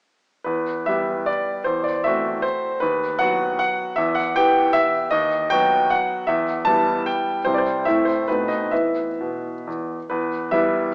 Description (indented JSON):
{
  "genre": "classical, romantic triple-time dance for piano with dotted rhythms",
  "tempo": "120-167 BPM",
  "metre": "3/4",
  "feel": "rubato",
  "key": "E minor",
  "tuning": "A4 = 441 Hz",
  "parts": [
    { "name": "clear baby grand piano", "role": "solo", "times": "0.4-10.9 s", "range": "D#2 to A5", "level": "-21 LUFS", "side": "equal", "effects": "none" }
  ],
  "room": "moderate concert hall reverb, RT60 2.5 s",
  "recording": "small speaker sound",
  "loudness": "-21 LUFS",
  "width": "mono",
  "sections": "0.5-10.1 A section",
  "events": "none",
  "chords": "0.5 Em; 1.7 F#m7b5/E; 2.8 B/D#; 4.0 Em; 5.1 B/D#; 6.3 Em; 7.5 C; 7.9 Am; 8.3 B7b9; 8.7 E5; 10.1 Em"
}